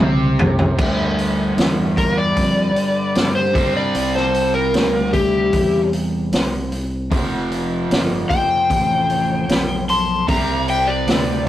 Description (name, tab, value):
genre	blues rock power trio and southern rock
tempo	76 BPM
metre	4/4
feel	straight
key	G mixolydian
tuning	A4 = 440 Hz
part	overdriven semi-hollow guitar	riff	0.0-11.5 s	F2 to C4	-22 LUFS	right 1 dB	none
part	overdriven fingered electric bass	bass	0.0-11.5 s	F1 to G2	-24 LUFS	equal	none
part	vintage drum kit	drums	0.0-11.3 s	crash cymbal, hi-hat, kick drum, snare drum, toms	-20 LUFS	equal	none
part	overdriven slide guitar	melody	2.0-11.4 s	G4 to C6	-19 LUFS	left 2 dB	none
part	nasal lead guitar with a parked wah	second line	2.0-11.4 s	E4 to A5	-30 LUFS	right 1 dB	overdrive
room	moderate small room reverb, RT60 0.6 s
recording	rough rehearsal-room recording, tube saturation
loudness	-16 LUFS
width	side -13 dB against mid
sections	0.8-11.5 A section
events	drum fill 0.0-0.8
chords	0.0 N.C.; 0.8 G; 3.6 C; 7.1 F; 10.3 C